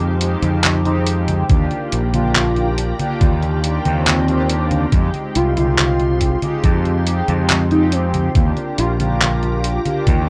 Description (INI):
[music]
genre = vaporwave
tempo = 70 BPM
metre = 4/4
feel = straight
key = F dorian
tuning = A4 = 440 Hz
[part]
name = mellow synth brass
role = accompaniment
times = 0.0-10.3 s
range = Ab3 to G4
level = -25 LUFS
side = equal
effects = lush chorus, analog delay
[part]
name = soft string machine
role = sustained chords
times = 0.0-10.3 s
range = Eb3 to D6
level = -35 LUFS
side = equal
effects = ensemble chorus, vintage 12-bit sampler grit
[part]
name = growling fingered electric bass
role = bass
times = 0.0-10.3 s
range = Bb1 to F2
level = -21 LUFS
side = equal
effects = overdrive
[part]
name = detuned 8-bit digital drum machine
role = drums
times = 0.0-10.2 s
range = congas, handclaps, hi-hat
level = -24 LUFS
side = equal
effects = none
[part]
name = warm velvety synth lead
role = melody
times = 0.9-10.2 s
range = C4 to F4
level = -25 LUFS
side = equal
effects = chorus, vintage 12-bit sampler grit, tape echo
[part]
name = electronic kick drum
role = drums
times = 1.5-10.2 s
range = none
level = -18 LUFS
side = equal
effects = none
[sound]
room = moderate studio reverb, RT60 0.5 s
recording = rough home demo mix, cassette tape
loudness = -17 LUFS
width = mono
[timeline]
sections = 0.0-10.3 A section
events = none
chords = 0.0 Fm7; 1.5 Ebmaj7; 4.9 Fm7; 8.4 Ebmaj7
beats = 0.64 | 1.50 2.35 3.21 4.07 | 4.93 5.78 6.64 7.50 | 8.36 9.21 10.07